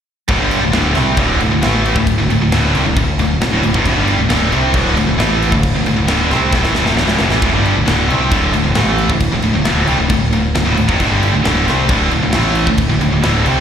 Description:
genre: heavy metal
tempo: 134 BPM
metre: 4/4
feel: straight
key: unclear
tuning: A4 = 440 Hz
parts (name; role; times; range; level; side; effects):
- distorted electric guitar; riff; 0.3-13.6 s; D2 to C4; -20 LUFS; equal; distortion
- heavy high-gain guitar; riff; 0.3-13.6 s; D2 to C4; -18 LUFS; left 10 dB; distortion, slapback echo
- scooped high-gain guitar; riff; 0.3-13.6 s; D2 to C4; -18 LUFS; right 9 dB; distortion, slapback echo
- growling picked electric bass; bass; 0.3-13.6 s; D1 to C2; -17 LUFS; equal; overdrive
- tight metal drum kit; drums; 0.3-13.6 s; crash cymbal, kick drum, snare drum; -20 LUFS; equal; none
room: light reverb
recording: live gig heard through the venue's PA, recital hall reverb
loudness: -12 LUFS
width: side -8 dB against mid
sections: 0.3-13.6 A section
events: drum fill 6.5-7.4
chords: 0.3 Dm

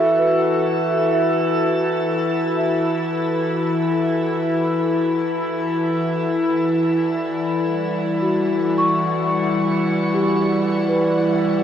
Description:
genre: ambient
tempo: free time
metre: none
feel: none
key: E dorian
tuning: A4 = 440 Hz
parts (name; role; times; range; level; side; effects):
- warbly tape-like pad; sustained chords; 0.0-11.6 s; E3 to D5; -19 LUFS; left 1 dB; chorus, built-in reverb
- large celesta; arpeggios; 0.0-11.6 s; F#4 to C#6; -23 LUFS; right 2 dB; diffuse ambient delay
- warm symphonic violin section; texture; 6.1-11.6 s; F#4 to F#5; -33 LUFS; equal; none
room: wet shimmer reverb, RT60 8.1 s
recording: dark, warm production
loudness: -17 LUFS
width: side -9 dB against mid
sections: 0.0-6.1 A section; 6.1-11.6 B section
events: none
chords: 0.0 F#m/E; 6.1 Em7

